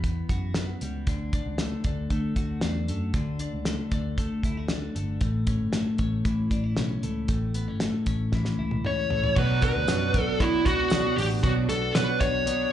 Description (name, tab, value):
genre	jangly indie pop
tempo	116 BPM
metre	4/4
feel	straight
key	B minor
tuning	A4 = 441 Hz
part	twelve-string electric guitar	arpeggios	0.0-12.7 s	A2 to F#4	-31 LUFS	left 3 dB	warbly pitch drift, plate reverb, tape echo
part	vintage muted picked electric bass	bass	0.0-12.6 s	G1 to D3	-30 LUFS	equal	none
part	cloth-damped thuddy drum kit	drums	0.0-12.6 s	crash cymbal, hi-hat, kick drum, snare drum, toms	-28 LUFS	equal	none
part	high-gain lead guitar	melody	8.9-12.7 s	E4 to C#5	-25 LUFS	equal	distortion, plate reverb
part	fingerpicked steel-string acoustic guitar	accompaniment	9.4-12.7 s	B2 to F#4	-29 LUFS	right 7 dB	plate reverb, slapback echo
part	tambourine	percussion	9.4-12.3 s	none	-45 LUFS	left 4 dB	none
room	moderate club reverb, RT60 0.8 s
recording	live gig heard through the venue's PA, club reverb, nothing above 11.0 kHz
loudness	-24 LUFS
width	side -10 dB against mid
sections	0.0-9.4 A section; 9.4-12.7 B section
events	drum fill 8.3-9.4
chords	0.0 Emadd9; 1.1 D; 5.2 A; 9.4 Bm